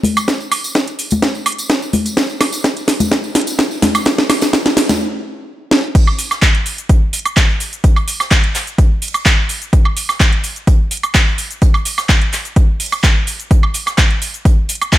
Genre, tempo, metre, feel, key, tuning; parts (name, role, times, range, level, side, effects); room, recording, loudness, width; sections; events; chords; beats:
house; 127 BPM; 4/4; straight
house drum kit; drums; 0.0-15.0 s; crash cymbal, handclaps, hi-hat, shaker, snare drum, woodblock; -15 LUFS; right 1 dB; studio reverb
congas and tambourine; percussion; 0.0-5.0 s; -20 LUFS; left 2 dB
electronic kick drum; drums; 0.3-15.0 s; -12 LUFS; equal; high-pass filter on kick, studio reverb
soft brush drum kit; drums; 6.0-15.0 s; hi-hat, snare drum; -28 LUFS; right 2 dB; sidechain pumping on hats, high-pass filter on hats, studio reverb, high-pass filter on snare, high-pass filter on room
light reverb, small room reverb; -12 LUFS; side -14 dB against mid
0.0-6.0 A section; 6.0-15.0 B section
build-up 0.0-6.0; drum fill 0.0-5.0, 5.7; stop 5.0-6.0; drop 6.0-15.0
| 0.28 0.75 1.23 1.70 | 2.17 2.64 3.12 3.59 | 4.06 4.53 5.00 5.48 | 5.95 6.42 6.89 7.37 | 7.84 8.31 8.78 9.26 | 9.73 10.20 10.67 11.15 | 11.62 12.09 12.56 13.04 | 13.51 13.98 14.45 14.93